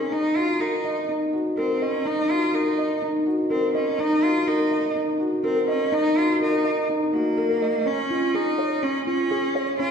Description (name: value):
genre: electronica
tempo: 124 BPM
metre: 4/4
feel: straight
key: unclear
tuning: A4 = 435 Hz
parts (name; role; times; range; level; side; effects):
- rich cello; melody; 0.0-9.9 s; Bb3 to F4; -26 LUFS; equal; none
- felt-muted upright piano; riff; 0.0-9.9 s; C4 to Eb5; -22 LUFS; equal; none
room: wet recital hall reverb, RT60 1.4 s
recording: none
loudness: -20 LUFS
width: side -6 dB against mid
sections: 0.0-7.9 A section; 7.9-9.9 B section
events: build-up 0.0-7.9; drop 7.9-9.9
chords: 0.1 Ebm; 7.9 Db